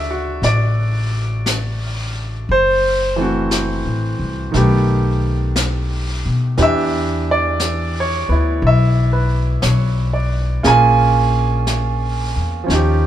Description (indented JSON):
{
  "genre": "jazz ballad",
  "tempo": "59 BPM",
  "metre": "4/4",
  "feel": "swing 68% on 8ths",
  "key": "unclear",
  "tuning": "A4 = 441 Hz",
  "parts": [
    { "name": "bright grand piano", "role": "accompaniment", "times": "0.0-13.1 s", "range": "C#3 to Ab5", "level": "-18 LUFS", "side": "right 2 dB", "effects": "none" },
    { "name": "upright bass", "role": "bass", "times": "0.0-13.1 s", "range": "F#1 to B2", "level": "-18 LUFS", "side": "left 1 dB", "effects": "none" },
    { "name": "jazz brush drum kit", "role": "drums", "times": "0.4-13.1 s", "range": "brushed snare drum, hi-hat, snare drum", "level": "-26 LUFS", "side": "left 2 dB", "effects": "none" }
  ],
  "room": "light reverb",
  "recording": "band playing live in one room",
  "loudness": "-15 LUFS",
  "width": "side -11 dB against mid",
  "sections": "0.0-13.1 A section",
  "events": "none",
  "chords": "0.0 Dmaj7; 2.5 F#m7b5; 4.5 Baug7; 6.6 Em7; 10.6 Bbm7"
}